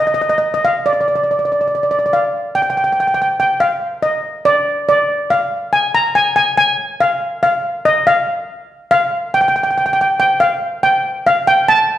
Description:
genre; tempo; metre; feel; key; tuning
calypso; 141 BPM; 4/4; straight; unclear; A4 = 438 Hz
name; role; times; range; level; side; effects
steel pan; solo; 0.0-12.0 s; D5 to Bb5; -13 LUFS; equal; none
room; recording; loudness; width
wet recital hall reverb, RT60 1.4 s; recorded in a church or concert hall; -13 LUFS; side -12 dB against mid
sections
0.0-2.8 A section; 2.8-12.0 B section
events
none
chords
none

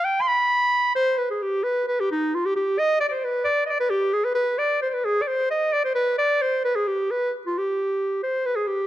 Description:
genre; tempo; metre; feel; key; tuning
klezmer; 132 BPM; 2/4; straight; G phrygian dominant; A4 = 438 Hz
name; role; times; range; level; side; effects
warm clarinet; solo; 0.0-8.9 s; Eb4 to C6; -20 LUFS; equal; none
room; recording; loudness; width
light reverb; close, detailed microphones; -20 LUFS; side -13 dB against mid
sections
0.0-1.2 A section; 1.2-8.4 B section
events
clarinet solo 0.0-1.2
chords
none

